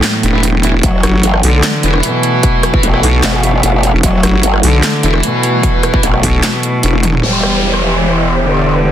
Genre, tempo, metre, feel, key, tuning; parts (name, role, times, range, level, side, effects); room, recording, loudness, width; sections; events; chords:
heavy wobble dubstep; 150 BPM; 4/4; half-time; E minor; A4 = 440 Hz
rich cello; melody; 0.0-8.9 s; A2 to G3; -16 LUFS; equal; ping-pong delay
supersaw pad; sustained chords; 0.0-8.9 s; E3 to G4; -21 LUFS; equal; sidechain pumping, low-pass filter
dubstep drum kit; drums; 0.0-7.8 s; crash cymbal, handclaps, hi-hat, rim click, snare drum, toms; -17 LUFS; right 1 dB; low-pass filter on hats, soft clipping on snare, low-pass filter on snare, low-pass filter on toms, low-pass filter on cymbals
vowel-sweep wobble bass; bass; 0.2-7.2 s; E1 to B1; -12 LUFS; equal; chorus, overdrive
fuzz guitar; stabs; 0.3-6.1 s; E4 to E5; -19 LUFS; right 2 dB; distortion, ping-pong delay
growl bass; bass; 0.8-8.9 s; E1 to G1; -14 LUFS; equal; chorus, overdrive
electronic kick drum; drums; 0.8-6.3 s; -14 LUFS; equal; overdrive
downlifter; sound effects; 7.2-8.9 s; -18 LUFS; equal
digital ambience; dense, heavily limited modern master; -9 LUFS; side -10 dB against mid
0.0-7.2 A section; 7.2-8.9 B section
drop 0.0-7.2; kick drops out 6.4-7.2; drum fill 6.9
0.0 Emadd9; 7.2 Em